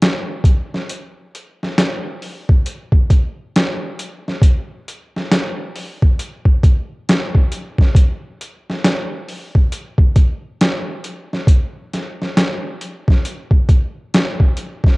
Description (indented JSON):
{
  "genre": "R&B",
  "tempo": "68 BPM",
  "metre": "4/4",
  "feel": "swing 64% on 16ths",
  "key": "none",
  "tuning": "none",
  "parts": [
    { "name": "boom bap sampler-style drum kit", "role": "drums", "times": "0.0-15.0 s", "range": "hi-hat, kick drum, snare drum", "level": "-14 LUFS", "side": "equal", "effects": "overdrive, cassette tape" }
  ],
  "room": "little or no reverb",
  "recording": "home recording on cassette",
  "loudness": "-14 LUFS",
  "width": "side -24 dB against mid",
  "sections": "0.0-15.0 A section",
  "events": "none",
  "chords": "none"
}